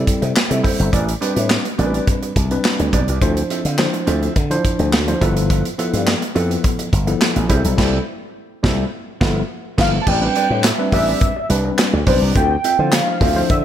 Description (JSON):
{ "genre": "early-eighties boogie funk", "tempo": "105 BPM", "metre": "4/4", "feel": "straight", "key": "A minor", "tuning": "A4 = 439 Hz", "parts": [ { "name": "tine electric piano", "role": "accompaniment", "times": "0.0-13.6 s", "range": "F3 to C5", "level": "-22 LUFS", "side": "left 2 dB", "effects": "auto-pan" }, { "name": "slap bass with an envelope filter", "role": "bass", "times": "0.0-13.6 s", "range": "G1 to D3", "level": "-19 LUFS", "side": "equal", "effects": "none" }, { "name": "modern studio drum kit", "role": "drums", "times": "0.1-13.6 s", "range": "crash cymbal, handclaps, hi-hat, kick drum, snare drum", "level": "-19 LUFS", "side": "equal", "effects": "gated reverb" }, { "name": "mellow electric guitar", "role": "riff", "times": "0.2-13.5 s", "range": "B3 to F5", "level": "-26 LUFS", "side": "right 5 dB", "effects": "lush chorus" }, { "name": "warm velvety synth lead", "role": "melody", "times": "9.8-13.6 s", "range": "C5 to A5", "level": "-19 LUFS", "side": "equal", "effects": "chorus, slapback echo" } ], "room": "small room ambience", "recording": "none", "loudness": "-15 LUFS", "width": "side -10 dB against mid", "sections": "0.0-10.1 A section; 10.1-13.6 B section", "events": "band accent 7.8-10.1", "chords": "0.0 C6; 0.9 Am11; 3.2 Dm9; 5.2 G13; 7.5 C6; 8.9 G13; 10.1 Am11; 12.4 Dm9" }